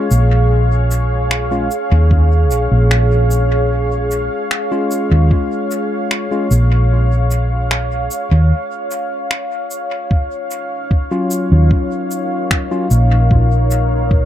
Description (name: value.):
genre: ambient dub.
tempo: 75 BPM.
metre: 4/4.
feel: straight.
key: unclear.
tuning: A4 = 442 Hz.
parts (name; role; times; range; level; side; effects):
deep dark ambient pad; sustained chords; 0.0-14.3 s; Eb4 to F5; -20 LUFS; equal; chorus, built-in reverb.
barky tine electric piano; stabs; 0.0-12.9 s; Gb3 to F4; -22 LUFS; left 2 dB; low-pass filter, dub echo.
hollow-body short-scale fingered electric bass; bass; 0.1-14.3 s; Bb1 to Eb2; -12 LUFS; equal; none.
electronic cabasa and finger snaps; drums; 0.1-13.9 s; none; -22 LUFS; equal; dub echo.
electronic kick drum; drums; 2.1-14.3 s; none; -15 LUFS; equal; none.
room: light reverb, digital ambience.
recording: echo-heavy mix.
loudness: -13 LUFS.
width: side -11 dB against mid.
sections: 0.0-10.1 A section; 10.1-14.3 B section.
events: break 8.5-10.1.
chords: 0.0 Db; 10.1 Ebm9.